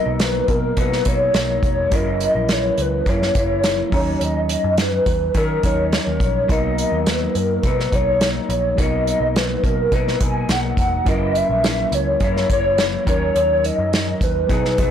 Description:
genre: indie pop, bedroom pop.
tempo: 105 BPM.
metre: 4/4.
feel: straight.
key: B major.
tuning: A4 = 445 Hz.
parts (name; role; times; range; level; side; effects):
hollow clarinet-like synth lead; melody; 0.0-14.9 s; A#4 to G#5; -20 LUFS; left 1 dB; ensemble chorus, tape echo.
electric guitar through a small old amp; accompaniment; 0.0-14.9 s; F#2 to A#4; -27 LUFS; left 6 dB; lush chorus, vibrato effect.
reed electric piano; accompaniment; 0.0-14.9 s; F#3 to A#5; -27 LUFS; right 4 dB; cassette tape.
vintage muted picked electric bass; bass; 0.1-14.9 s; E1 to D#3; -24 LUFS; equal; tube saturation.
unplugged drum kit; drums; 0.2-14.9 s; hi-hat, kick drum, snare drum; -21 LUFS; equal; none.
room: light reverb.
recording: blown-out, overdriven recording, overdrive.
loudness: -16 LUFS.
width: side -9 dB against mid.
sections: 0.0-14.9 A section.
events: none.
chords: 0.0 Bmaj7; 1.9 F#7; 3.9 D#m7; 6.5 Bmaj7; 11.1 F#7; 13.1 D#m7.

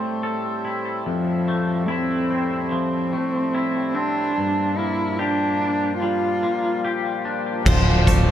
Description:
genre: post-rock.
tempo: 73 BPM.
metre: 4/4.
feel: straight.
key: unclear.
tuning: A4 = 441 Hz.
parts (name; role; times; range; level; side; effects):
muted cello; melody; 0.0-8.3 s; F3 to F4; -23 LUFS; right 1 dB; tape echo.
pedal harmonium; sustained chords; 0.0-8.3 s; A2 to C6; -32 LUFS; equal; none.
twangy electric guitar; arpeggios; 0.0-8.3 s; D2 to A4; -25 LUFS; left 3 dB; lush chorus, tape echo.
twelve-string electric guitar; arpeggios; 7.7-8.3 s; A4 to C5; -29 LUFS; right 7 dB; tape echo.
growling fingered electric bass; bass; 7.7-8.3 s; D1; -18 LUFS; equal; overdrive.
huge arena drum kit; drums; 7.7-8.3 s; crash cymbal, hi-hat, kick drum; -18 LUFS; equal; none.
room: moderate concert hall reverb, RT60 2.0 s.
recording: dark, warm production.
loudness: -20 LUFS.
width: side -10 dB against mid.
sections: 0.0-7.7 A section.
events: none.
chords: 0.0 Am7; 1.1 Fmaj7; 4.4 Gm7; 7.7 Dm7.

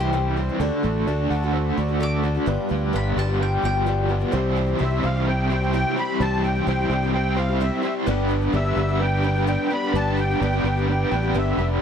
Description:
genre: folk rock and heartland rock.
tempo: 128 BPM.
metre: 4/4.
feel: straight.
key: G major.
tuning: A4 = 438 Hz.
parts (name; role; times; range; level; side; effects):
mandolin; second line; 0.0-4.1 s; G4 to D6; -29 LUFS; left 4 dB; none.
dark grand piano; accompaniment; 0.0-11.8 s; B3 to C5; -32 LUFS; right 7 dB; none.
picked acoustic archtop guitar; accompaniment; 0.0-11.8 s; G2 to C5; -30 LUFS; left 9 dB; none.
hand-pumped harmonium; sustained chords; 0.0-11.8 s; G3 to A4; -35 LUFS; left 2 dB; none.
raw garage guitar; riff; 0.0-11.8 s; G2 to C5; -25 LUFS; right 1 dB; overdrive, tremolo.
fingered electric bass; bass; 0.0-11.8 s; F1 to D2; -23 LUFS; equal; none.
musette accordion; melody; 4.8-11.7 s; E5 to B5; -27 LUFS; equal; slapback echo.
room: light reverb.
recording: dry, close 1970s-style studio recording.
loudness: -20 LUFS.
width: side -8 dB against mid.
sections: 0.0-4.3 A section; 4.3-11.8 B section.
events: mandolin solo 0.0-4.3.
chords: 0.0 C; 0.6 D; 2.5 G7; 4.3 C; 8.1 G.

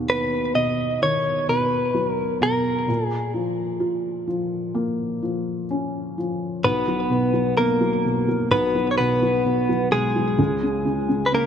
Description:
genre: pop.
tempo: 64 BPM.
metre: 4/4.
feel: straight.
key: unclear.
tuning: A4 = 440 Hz.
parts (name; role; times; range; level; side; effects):
felt-muted upright piano; accompaniment; 0.0-11.5 s; B1 to F4; -23 LUFS; equal; none.
direct-recorded clean electric guitar; melody; 0.1-11.5 s; Ab3 to D#5; -21 LUFS; left 1 dB; none.
room: moderate plate reverb, RT60 3.8 s.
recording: dark, warm production.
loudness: -20 LUFS.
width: side -8 dB against mid.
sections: 0.0-6.6 A section; 6.6-11.5 B section.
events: none.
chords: 0.0 B/D#; 2.9 Bbm; 6.6 B5; 10.4 Db5.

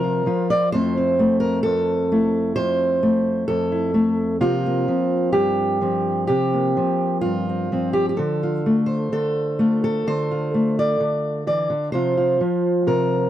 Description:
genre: folk, solo fingerstyle acoustic guitar.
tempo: 65 BPM.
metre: 4/4.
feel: rubato.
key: F major.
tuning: A4 = 445 Hz.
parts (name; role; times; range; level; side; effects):
fingerpicked steel-string acoustic guitar; solo; 0.0-13.3 s; F2 to D5; -18 LUFS; equal; none.
room: light reverb.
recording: dry, close 1970s-style studio recording.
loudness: -18 LUFS.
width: side -12 dB against mid.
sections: 0.0-13.3 A section.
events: none.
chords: 0.0 Csus4; 0.7 Fmaj7; 4.4 C7sus4; 8.2 Dm7; 11.9 C7sus4.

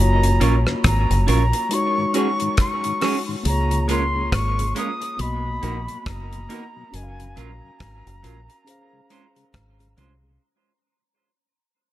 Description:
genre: lovers rock reggae.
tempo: 69 BPM.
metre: 4/4.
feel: swing 59% on 16ths.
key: Db major.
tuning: A4 = 440 Hz.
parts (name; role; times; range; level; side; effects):
silver concert flute; melody; 0.0-10.0 s; Ab5 to Eb6; -26 LUFS; equal; tape echo.
mellow tine electric piano; accompaniment; 0.0-10.4 s; Ab3 to F5; -28 LUFS; left 3 dB; none.
deep dub fingered electric bass; bass; 0.0-10.4 s; Gb1 to Db2; -21 LUFS; equal; none.
mellow tonewheel organ; accompaniment; 0.2-10.3 s; Gb2 to Gb4; -32 LUFS; left 4 dB; chorus vibrato.
damped 70s drum kit; drums; 0.2-10.2 s; hi-hat, kick drum, rim click; -24 LUFS; equal; none.
semi-hollow electric guitar; stabs; 0.4-10.1 s; Gb3 to Db5; -27 LUFS; right 6 dB; tape echo.
room: light reverb, small room ambience.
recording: none.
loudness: -18 LUFS.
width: side -14 dB against mid.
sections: 0.0-10.4 A section.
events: fade-out 0.0-10.4.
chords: 0.0 Gbmaj7; 1.7 Ab7sus4; 3.5 Db6; 5.2 Cbmaj7; 6.9 Gbmaj7; 8.7 Dbmaj7.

